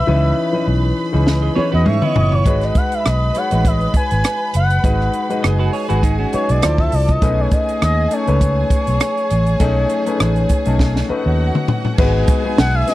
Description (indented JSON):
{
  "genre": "lush 1970s-style soul",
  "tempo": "101 BPM",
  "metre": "4/4",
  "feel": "swing 54% on 16ths",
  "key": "unclear",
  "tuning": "A4 = 445 Hz",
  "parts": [
    { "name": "expressive synth lead", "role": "melody", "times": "0.0-12.9 s", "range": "C#5 to G#5", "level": "-21 LUFS", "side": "equal", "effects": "chorus" },
    { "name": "warm studio violin section", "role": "second line", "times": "0.0-12.9 s", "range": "F#4 to C#6", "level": "-28 LUFS", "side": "right 3 dB", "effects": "none" },
    { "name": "clear baby grand piano", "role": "accompaniment", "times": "0.0-12.9 s", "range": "E3 to C#5", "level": "-22 LUFS", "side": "left 4 dB", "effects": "none" },
    { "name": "vintage muted fingered electric bass", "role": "bass", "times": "0.1-12.8 s", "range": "F#1 to G#2", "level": "-17 LUFS", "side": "equal", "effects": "none" },
    { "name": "compact cocktail drum kit", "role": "drums", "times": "1.3-12.9 s", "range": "crash cymbal, hi-hat, kick drum, rim click, snare drum, toms", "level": "-18 LUFS", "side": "equal", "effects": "none" },
    { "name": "semi-hollow electric guitar", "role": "riff", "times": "1.4-6.6 s", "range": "B3 to D#5", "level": "-24 LUFS", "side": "right 7 dB", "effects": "none" }
  ],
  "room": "little or no reverb",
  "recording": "dry, close 1970s-style studio recording",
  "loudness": "-14 LUFS",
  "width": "side -16 dB against mid",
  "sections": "0.0-12.0 A section",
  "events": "drum fill 1.3-2.5, 10.8-12.0",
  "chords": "0.0 C#m9; 2.5 G#m7; 6.6 Dm9; 7.2 B9; 12.0 G#m7"
}